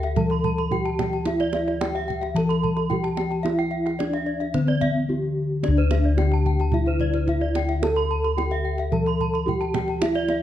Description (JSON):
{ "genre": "Balinese gamelan", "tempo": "110 BPM", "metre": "4/4", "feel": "straight", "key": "D slendro", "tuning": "A4 = 440 Hz", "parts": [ { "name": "gamelan-type bronze metallophone", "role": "melody", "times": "0.0-10.4 s", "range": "C4-45c to A4+25c", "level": "-27 LUFS", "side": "equal", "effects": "none" }, { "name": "gamelan-type bronze metallophone", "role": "arpeggios", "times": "0.0-10.4 s", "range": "C5-45c to A5+25c", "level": "-31 LUFS", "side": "left 5 dB", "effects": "none" }, { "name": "gamelan-type bossed gongs", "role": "bass", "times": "0.0-10.4 s", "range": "D2 to A4+25c", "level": "-24 LUFS", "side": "left 1 dB", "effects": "none" }, { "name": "kendang", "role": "percussion", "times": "0.0-10.4 s", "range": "none", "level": "-30 LUFS", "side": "right 6 dB", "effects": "none" }, { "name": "gamelan-type bronze metallophone", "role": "arpeggios", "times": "0.3-10.3 s", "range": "C5-45c to C6-45c", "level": "-31 LUFS", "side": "right 6 dB", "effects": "none" } ], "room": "light reverb", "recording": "close, detailed microphones", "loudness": "-21 LUFS", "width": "side -11 dB against mid", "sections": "0.0-10.4 A section", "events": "none", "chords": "none" }